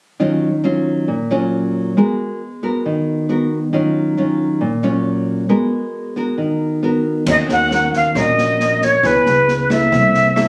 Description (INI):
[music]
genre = bossa nova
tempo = 136 BPM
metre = 4/4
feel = straight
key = Eb minor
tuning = A4 = 436 Hz
[part]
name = nylon-string guitar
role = accompaniment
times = 0.2-10.5 s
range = Bb2 to Bb4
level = -19 LUFS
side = equal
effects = none
[part]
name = jazz flute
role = melody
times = 7.3-10.5 s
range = Cb5 to Gb5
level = -16 LUFS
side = equal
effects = none
[part]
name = upright bass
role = bass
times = 7.3-10.5 s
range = Bb1 to Eb2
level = -24 LUFS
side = equal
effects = none
[part]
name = open jazz drum kit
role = drums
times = 7.3-10.5 s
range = crash cymbal, kick drum, rim click, snare drum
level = -27 LUFS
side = equal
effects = none
[sound]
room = moderate small room reverb, RT60 0.5 s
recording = recorded on a phone in the room, club reverb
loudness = -17 LUFS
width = mono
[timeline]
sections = 0.2-7.3 A section; 7.3-10.5 B section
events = none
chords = 0.2 Ebm9; 2.0 Abm9; 3.7 Ebm9; 5.5 Abm9; 7.3 Ebm7; 9.0 Dbm7; 9.9 C6